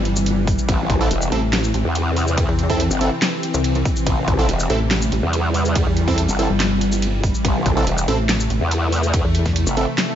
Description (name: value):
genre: heavy wobble dubstep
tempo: 142 BPM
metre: 4/4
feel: half-time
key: A minor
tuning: A4 = 441 Hz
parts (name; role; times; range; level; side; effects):
- evolving wavetable pad; sustained chords; 0.0-10.2 s; C3 to C4; -24 LUFS; left 1 dB; phaser, built-in reverb, sidechain pumping
- pulsing pluck wobble bass; bass; 0.0-9.7 s; G1 to E2; -19 LUFS; equal; chorus, overdrive
- dubstep drum kit; drums; 0.1-10.1 s; handclaps, hi-hat, ride cymbal, shaker, snare drum; -25 LUFS; equal; none
- electronic kick drum; drums; 0.5-9.5 s; none; -21 LUFS; equal; none
- growl bass; bass; 0.7-9.9 s; E1 to E2; -20 LUFS; equal; chorus, overdrive
- supersaw stab; stabs; 1.0-9.9 s; C4 to A4; -25 LUFS; right 3 dB; cassette tape, digital delay
room: little or no reverb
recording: nothing above 7.7 kHz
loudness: -16 LUFS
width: side -10 dB against mid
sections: 0.0-10.2 A section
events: none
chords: 0.0 Am